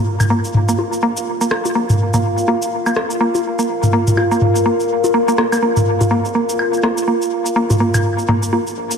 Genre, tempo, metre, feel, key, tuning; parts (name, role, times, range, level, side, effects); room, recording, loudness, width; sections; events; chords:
minimal techno; 124 BPM; 4/4; swing 58% on 16ths; A4 = 440 Hz
mallet-like synth pluck; riff; 0.0-8.6 s; Bb3; -19 LUFS; right 1 dB; chorus, dub echo
warbly tape-like pad; texture; 0.0-9.0 s; F4 to F5; -19 LUFS; equal; chorus, built-in reverb
cabasa; drums; 0.2-9.0 s; -30 LUFS; equal; tape echo
booming analog drum machine; percussion; 0.2-8.6 s; bongos, rim click, toms, woodblock; -18 LUFS; equal; dub echo
round analog bass; bass; 0.4-9.0 s; F1 to Bb2; -36 LUFS; right 1 dB
moderate echo chamber reverb, RT60 2.4 s; echo-heavy mix; -14 LUFS; side -6 dB against mid
0.0-9.0 A section
0.0 Bb5